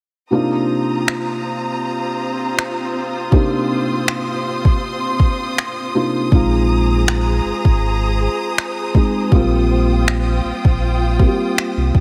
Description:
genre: contemporary R&B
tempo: 80 BPM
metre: 4/4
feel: swing 54% on 16ths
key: C minor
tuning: A4 = 438 Hz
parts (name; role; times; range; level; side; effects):
- felt-muted upright piano; accompaniment; 0.3-12.0 s; C3 to Ab4; -23 LUFS; equal; none
- warm studio string section; sustained chords; 0.3-12.0 s; C4 to Eb6; -25 LUFS; equal; none
- smooth R&B drum kit; drums; 1.1-12.0 s; finger snaps, kick drum; -17 LUFS; equal; none
- sub bass with octave; bass; 6.3-12.0 s; Ab1 to C2; -20 LUFS; equal; none
room: small room ambience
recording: none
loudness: -18 LUFS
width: mono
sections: 0.3-12.0 A section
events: none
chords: 0.3 Cm11; 6.3 Bb9sus4; 9.3 Eb69/Bb

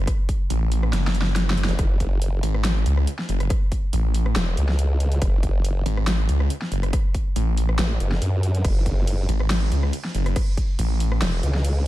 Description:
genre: heavy wobble dubstep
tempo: 140 BPM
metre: 4/4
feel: swing 53% on 16ths, half-time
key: F# minor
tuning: A4 = 443 Hz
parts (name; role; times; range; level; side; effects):
- snarling distorted saw bass; bass; 0.0-11.2 s; F#1 to C#2; -20 LUFS; equal; distortion, overdrive
- big-room dance drum kit; drums; 0.1-11.7 s; crash cymbal, hi-hat, rim click, snare drum; -28 LUFS; equal; overdrive, studio reverb
- electronic kick drum; drums; 0.1-10.7 s; none; -22 LUFS; equal; overdrive, studio reverb
- formant-sweep wobble bass; bass; 1.7-11.9 s; E1 to F#2; -21 LUFS; equal; chorus, overdrive
room: little or no reverb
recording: none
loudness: -20 LUFS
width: side -16 dB against mid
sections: 0.0-11.9 A section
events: drum fill 0.9-1.8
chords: 0.0 F#m

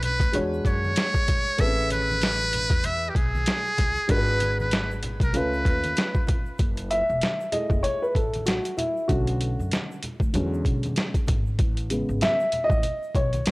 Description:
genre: hip hop, jazz-hop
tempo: 96 BPM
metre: 4/4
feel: swing 58% on 16ths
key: F# minor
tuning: A4 = 440 Hz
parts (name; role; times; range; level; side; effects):
- trumpet with metal mute; melody; 0.0-6.3 s; G4 to E5; -26 LUFS; equal; tape echo
- dark baby grand piano; accompaniment; 0.0-13.5 s; C#3 to E5; -27 LUFS; equal; none
- upright bass; bass; 0.0-13.5 s; E1 to F#2; -29 LUFS; equal; none
- boom bap sampler-style drum kit; drums; 0.0-13.5 s; hi-hat, kick drum, snare drum; -24 LUFS; equal; none
- congas and egg shaker; percussion; 0.0-13.5 s; none; -39 LUFS; equal; none
room: light reverb, small room ambience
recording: dry, gritty hardware recording, cassette tape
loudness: -22 LUFS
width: side -24 dB against mid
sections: 0.0-6.6 A section; 6.6-13.5 B section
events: grand piano solo 6.6-13.5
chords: 0.3 E13; 1.6 Amaj9; 4.1 G#m7b5; 5.3 C#7b13; 6.6 F#m9; 9.1 Bm9; 10.3 E13; 11.6 Amaj9

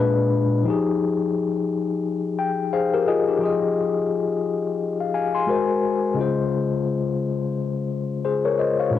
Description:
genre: hip hop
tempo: 87 BPM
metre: 4/4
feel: swing 59% on 16ths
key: F minor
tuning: A4 = 440 Hz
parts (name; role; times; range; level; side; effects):
- tine electric piano; solo; 0.0-9.0 s; Bb2 to C6; -20 LUFS; left 4 dB; medium stereo tremolo, low-pass filter, cassette tape
room: wet booth ambience, RT60 0.2 s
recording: home recording on cassette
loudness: -20 LUFS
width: side -11 dB against mid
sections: 0.0-3.4 A section; 3.4-9.0 B section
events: tine electric piano fill 2.0-3.4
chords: 0.0 Bb7b9; 0.7 Fm9; 3.4 Fm7; 5.5 Ab9; 6.2 Dbmaj7

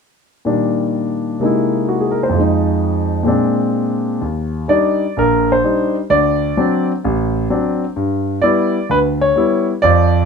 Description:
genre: solo jazz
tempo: 128 BPM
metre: 4/4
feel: swing 67% on 8ths, rubato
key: Eb major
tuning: A4 = 439 Hz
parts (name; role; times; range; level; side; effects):
- warm concert grand piano; solo; 0.5-10.3 s; A1 to D5; -14 LUFS; equal; none
room: light reverb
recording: minimal, uncompressed stereo recording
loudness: -14 LUFS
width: side -6 dB against mid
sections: 0.5-4.2 A section; 4.2-10.3 B section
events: none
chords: 0.5 Ebmaj7/Bb; 1.4 C7alt; 2.3 Fm7; 3.3 Bb9; 4.2 Ebmaj7; 6.1 D7; 8.0 G6

